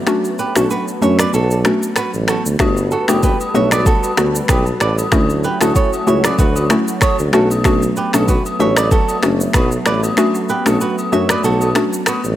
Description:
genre	afrobeats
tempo	95 BPM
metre	4/4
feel	swing 55% on 16ths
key	unclear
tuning	A4 = 442 Hz
part	warm analog pad	sustained chords	0.0-12.4 s	F#3 to B4	-24 LUFS	equal	chorus
part	hollow square pluck	accompaniment	0.1-12.0 s	A3 to F#4	-18 LUFS	left 2 dB	chorus
part	afro-pop drum kit	drums	0.1-12.4 s	finger snaps, kick drum, rim click, shaker	-18 LUFS	equal	none
part	flamenco guitar	riff	0.4-12.2 s	E4 to E5	-21 LUFS	right 4 dB	digital delay
part	warm tuba	bass	0.6-12.4 s	F#1 to F#2	-19 LUFS	equal	none
part	agogo bells	percussion	2.6-12.2 s	none	-27 LUFS	left 4 dB	none
room	light reverb, small room ambience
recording	none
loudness	-13 LUFS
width	side -13 dB against mid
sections	0.0-12.4 A section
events	break 0.0-2.6; kick muted 10.2-12.4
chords	0.0 Gmaj9; 5.1 Dmaj7; 7.3 Gmaj9 (rootless)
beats	| 0.07 0.70 1.33 1.97 | 2.60 3.23 3.86 4.49 | 5.12 5.76 6.39 7.02 | 7.65 8.28 8.91 9.54 | 10.18 10.81 11.44 12.07

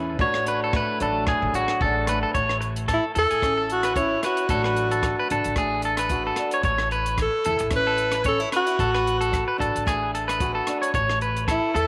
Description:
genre	highlife guitar band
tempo	112 BPM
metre	4/4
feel	swing 55% on 16ths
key	A major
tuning	A4 = 440 Hz
part	fingerpicked old ladder-braced acoustic guitar	accompaniment	0.0-11.9 s	A2 to A4	-33 LUFS	equal	none
part	upright bass	bass	0.0-11.9 s	A1 to E2	-33 LUFS	equal	none
part	electric guitar at the edge of break-up	arpeggios	0.2-11.9 s	F#4 to C#5	-27 LUFS	equal	none
part	compact cocktail drum kit	drums	0.2-11.9 s	hi-hat, kick drum, rim click	-32 LUFS	equal	none
part	clear alto saxophone	melody	2.9-11.9 s	E4 to B4	-26 LUFS	equal	none
room	moderate spring reverb, RT60 1.9 s, studio ambience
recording	none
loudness	-23 LUFS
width	mono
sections	0.0-2.3 A section; 2.3-11.9 B section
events	none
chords	0.2 D/A; 2.3 A; 4.5 D/A; 6.6 A; 8.8 D/A; 10.9 A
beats	| 0.20 0.74 1.27 1.81 | 2.35 2.88 3.42 3.96 | 4.50 5.03 5.57 6.11 | 6.65 7.18 7.72 8.26 | 8.80 9.33 9.87 10.41 | 10.95 11.48

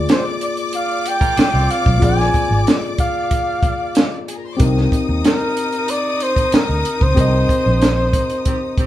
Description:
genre	lush 1970s-style soul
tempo	93 BPM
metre	4/4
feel	straight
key	C minor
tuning	A4 = 440 Hz
part	rich studio string section	second line	0.0-8.9 s	Eb4 to Eb6	-26 LUFS	left 4 dB	none
part	tine electric piano	accompaniment	0.0-8.9 s	Bb3 to Eb5	-23 LUFS	left 3 dB	none
part	vintage muted fingered electric bass	bass	0.0-8.2 s	Ab1 to Eb2	-18 LUFS	equal	none
part	breathy flugelhorn	melody	0.1-8.9 s	Bb4 to Ab5	-20 LUFS	equal	none
part	compact cocktail drum kit	drums	0.1-8.9 s	hi-hat, kick drum, snare drum	-17 LUFS	right 1 dB	none
part	semi-hollow electric guitar	riff	1.2-2.5 s	C4 to Bb4	-27 LUFS	right 5 dB	none
part	warm horn section	stabs	8.5-8.9 s	Eb3 to G4	-28 LUFS	right 2 dB	none
room	moderate large studio reverb, RT60 0.9 s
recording	band playing live in one room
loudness	-14 LUFS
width	side -13 dB against mid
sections	0.0-8.9 A section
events	band accent 7.2-8.9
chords	0.0 Bb7; 4.6 Cm7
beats	0.09 0.73 1.38 | 2.02 2.67 3.31 3.96 | 4.60 5.24 5.89 6.53 | 7.17 7.82 8.46

